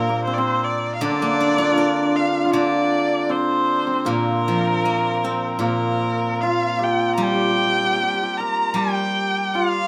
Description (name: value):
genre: chinese traditional, Chinese chamber ensemble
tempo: 78 BPM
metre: 4/4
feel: rubato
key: unclear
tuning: A4 = 440 Hz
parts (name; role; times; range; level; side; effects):
- clear erhu; melody; 0.0-9.9 s; Bb4 to Bb5; -25 LUFS; equal; none
- hammered dulcimer; second line; 0.0-9.9 s; G3 to Bb4; -25 LUFS; equal; none
- steel-string zither; accompaniment; 0.0-9.9 s; Bb2 to Bb4; -26 LUFS; equal; none
room: moderate small room reverb, RT60 0.5 s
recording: none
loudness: -20 LUFS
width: mono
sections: 0.0-9.9 A section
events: none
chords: none